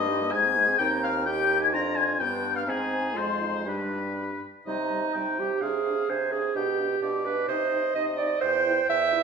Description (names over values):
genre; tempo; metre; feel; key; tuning
quick classical-period movement for wind quintet; 127 BPM; 2/4; rubato; C minor; A4 = 440 Hz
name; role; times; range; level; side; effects
concert flute; melody; 0.0-9.2 s; Eb5 to Bb6; -28 LUFS; left 7 dB; none
clear oboe; second line; 0.0-9.2 s; Ab4 to Bb5; -30 LUFS; left 6 dB; none
warm French horn; accompaniment; 0.0-9.2 s; G3 to E4; -36 LUFS; left 1 dB; none
warm clarinet; accompaniment; 0.0-9.2 s; D4 to E5; -27 LUFS; right 7 dB; none
warm bassoon; bass; 0.0-9.2 s; Eb2 to C3; -33 LUFS; right 1 dB; none
room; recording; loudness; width
wet recital hall reverb, RT60 1.4 s; minimal, uncompressed stereo recording, lossy compression artefacts; -24 LUFS; side -5 dB against mid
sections
0.0-4.7 A section; 4.7-9.2 B section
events
none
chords
0.3 Ab; 0.8 Cm/Eb; 1.7 Ddim/F; 2.2 G; 2.7 Ab; 3.2 Fm; 3.7 G; 4.7 Cm; 5.6 Dm7b5/C; 6.6 G/B; 7.5 Cm; 8.4 C/E